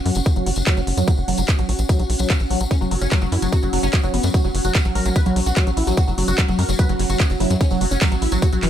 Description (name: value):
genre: psychedelic trance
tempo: 147 BPM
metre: 4/4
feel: straight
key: F# major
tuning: A4 = 438 Hz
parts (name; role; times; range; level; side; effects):
- ethereal airy pad; texture; 0.0-8.7 s; C#4 to F#5; -28 LUFS; equal; ensemble chorus, built-in reverb, sidechain pumping
- liquid acid bass; riff; 0.1-8.7 s; E3 to F#3; -26 LUFS; moving between left 6 dB and right 7 dB; phaser, auto-pan, sidechain pumping, digital delay
- tight sequencer bass; bass; 0.1-8.7 s; F#1 to F#2; -21 LUFS; equal; none
- drum and bass drum kit; drums; 0.1-8.7 s; handclaps, hi-hat; -26 LUFS; equal; none
- tambourine; percussion; 0.1-8.6 s; none; -33 LUFS; left 5 dB; none
- electronic kick drum; drums; 0.3-8.5 s; none; -18 LUFS; equal; none
- supersaw stab; melody; 2.7-8.7 s; F#3 to B4; -25 LUFS; equal; phaser, sidechain pumping, digital delay
room: little or no reverb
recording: none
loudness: -17 LUFS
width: side -10 dB against mid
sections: 0.0-8.7 A section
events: filter sweep on acid bass 0.0-8.7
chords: 0.0 F#5